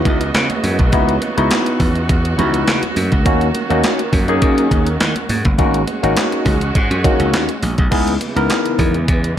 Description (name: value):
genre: early-eighties boogie funk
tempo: 103 BPM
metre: 4/4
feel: straight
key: C# dorian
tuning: A4 = 440 Hz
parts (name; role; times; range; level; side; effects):
- barky tine electric piano; accompaniment; 0.0-8.9 s; A#3 to A#4; -18 LUFS; left 2 dB; overdrive, phaser
- warm studio string section; sustained chords; 0.0-9.4 s; C#3 to D#5; -22 LUFS; right 2 dB; none
- slap bass; bass; 0.1-9.3 s; F#1 to D#3; -18 LUFS; equal; none
- clean 12-bit digital drum machine; drums; 0.1-9.4 s; crash cymbal, handclaps, hi-hat, kick drum, snare drum; -18 LUFS; equal; overdrive, gated reverb
- congas; percussion; 0.3-8.9 s; none; -27 LUFS; right 4 dB; none
room: little or no reverb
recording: none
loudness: -13 LUFS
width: side -10 dB against mid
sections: 0.0-7.9 A section; 7.9-9.4 B section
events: none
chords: 0.0 C#m11; 3.3 D#m7; 5.6 G#7sus4; 7.9 C#m7